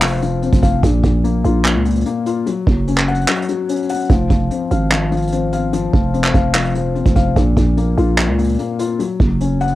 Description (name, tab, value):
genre	hip hop, trap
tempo	147 BPM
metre	4/4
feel	half-time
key	F phrygian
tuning	A4 = 440 Hz
part	felt-muted upright piano	accompaniment	0.0-9.8 s	Bb2 to Gb5	-19 LUFS	left 5 dB	cassette tape
part	growling 808-style bass	bass	0.0-9.8 s	F1 to Db2	-17 LUFS	right 1 dB	none
part	vintage brush drum kit	drums	0.0-9.7 s	handclaps, hi-hat, kick drum	-18 LUFS	right 1 dB	none
room	little or no reverb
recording	home recording on cassette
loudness	-14 LUFS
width	side -15 dB against mid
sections	0.0-9.8 A section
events	break 3.3-4.1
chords	0.0 F5; 0.8 Bbm; 2.5 Gb5; 4.1 Fm; 7.4 Bbm; 9.0 Gb5